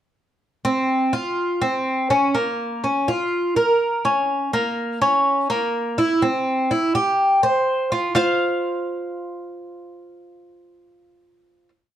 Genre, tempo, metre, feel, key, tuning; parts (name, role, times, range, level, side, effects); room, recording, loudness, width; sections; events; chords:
latin; 124 BPM; 4/4; straight; A4 = 440 Hz
Cuban tres; solo; 0.6-11.7 s; Bb3 to F5; -19 LUFS; equal
moderate studio reverb, RT60 0.8 s; dark, warm production; -18 LUFS; side -11 dB against mid
0.4-8.2 verse; 8.2-12.0 final chord
0.4 F5; 2.3 Bbm; 4.3 Bbdim; 6.2 C; 8.2 F5